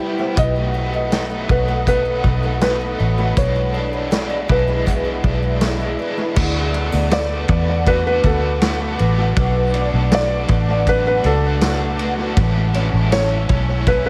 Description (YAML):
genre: dream pop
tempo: 80 BPM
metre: 4/4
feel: straight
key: unclear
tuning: A4 = 441 Hz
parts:
  - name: felt-muted upright piano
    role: melody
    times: 0.0-14.1 s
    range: A4 to D#5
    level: -24 LUFS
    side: equal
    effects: analog delay
  - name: biting overdriven guitar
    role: accompaniment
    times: 0.0-14.1 s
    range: A2 to F#4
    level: -30 LUFS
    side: equal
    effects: tremolo, subtle chorus, analog delay
  - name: ethereal airy pad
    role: sustained chords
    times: 0.0-14.1 s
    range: G4 to E6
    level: -31 LUFS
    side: equal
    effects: ensemble chorus, built-in reverb
  - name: fingerpicked twelve-string acoustic guitar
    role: arpeggios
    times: 0.0-14.1 s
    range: B2 to F#4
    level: -28 LUFS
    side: equal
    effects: ensemble chorus, analog delay
  - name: vintage muted fingered electric bass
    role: bass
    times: 0.4-14.1 s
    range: A1 to E2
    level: -22 LUFS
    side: equal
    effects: none
  - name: vintage drum kit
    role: drums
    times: 0.4-14.0 s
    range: crash cymbal, hi-hat, kick drum, ride cymbal, snare drum, tambourine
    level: -23 LUFS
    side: equal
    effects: analog delay
room: light reverb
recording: echo-heavy mix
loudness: -18 LUFS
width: mono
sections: 0.0-6.4 A section; 6.4-14.1 B section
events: none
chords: 0.4 B7; 3.4 E7/B; 6.4 D6; 9.4 Bm7; 12.4 Amaj7